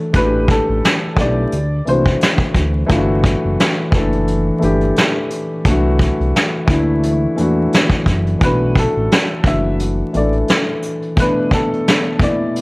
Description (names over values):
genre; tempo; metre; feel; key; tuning
lo-fi hip hop; 87 BPM; 4/4; swing 56% on 16ths; unclear; A4 = 440 Hz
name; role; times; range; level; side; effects
felt-muted upright piano; accompaniment; 0.0-12.6 s; B2 to A4; -18 LUFS; left 1 dB; low-pass filter
smooth gliding synth bass; bass; 0.1-10.4 s; F#1 to E2; -18 LUFS; equal; none
vintage brush drum kit; drums; 0.1-12.6 s; hi-hat, kick drum, snare drum; -16 LUFS; equal; none
warm upright piano; melody; 0.2-2.2, 8.4-12.6 s; A4 to E5; -21 LUFS; left 1 dB; low-pass filter, tape echo
room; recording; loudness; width
light reverb, small room ambience; vinyl crackle; -13 LUFS; side -24 dB against mid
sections
0.0-12.6 A section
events
none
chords
0.1 Asus2; 1.5 D7; 2.9 Gsus2; 5.7 Cadd9; 8.4 Bm7; 11.2 Asus24/B